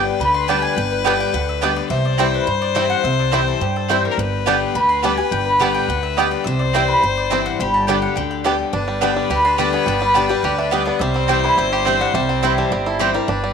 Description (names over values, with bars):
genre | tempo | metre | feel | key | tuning
bluegrass | 211 BPM | 4/4 | straight | G major | A4 = 439 Hz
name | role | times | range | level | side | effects
clear fiddle | second line | 0.0-13.5 s | G4 to C5 | -23 LUFS | left 8 dB | none
picked steel-string acoustic guitar | accompaniment | 0.0-13.5 s | G2 to G4 | -23 LUFS | left 10 dB | none
upright bass | bass | 0.0-13.5 s | G1 to G2 | -24 LUFS | right 2 dB | transformer saturation
mandolin | melody | 0.2-13.3 s | G4 to C6 | -21 LUFS | equal | slapback echo
bluegrass banjo | melody | 0.5-13.5 s | G3 to G4 | -24 LUFS | right 4 dB | none
mandolin | stabs | 0.5-13.1 s | B3 to G5 | -23 LUFS | right 13 dB | none
room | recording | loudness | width
moderate spring reverb, RT60 1.8 s, small room ambience | 1960s-style stereo with parts hard left and right | -16 LUFS | side -6 dB against mid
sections
0.0-8.7 A section; 8.7-13.5 A section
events
none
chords
0.0 G; 1.9 C; 4.2 G; 6.5 C; 7.6 G; 11.0 C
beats
0.20 0.48 | 0.77 1.05 1.34 1.62 | 1.91 2.19 2.48 2.76 | 3.04 3.33 3.61 3.90 | 4.18 4.47 4.75 5.04 | 5.32 5.60 5.89 6.17 | 6.46 6.74 7.03 7.31 | 7.60 7.88 8.16 8.45 | 8.73 9.02 9.30 9.59 | 9.87 10.16 10.44 10.72 | 11.01 11.29 11.58 11.86 | 12.15 12.43 12.72 13.00 | 13.29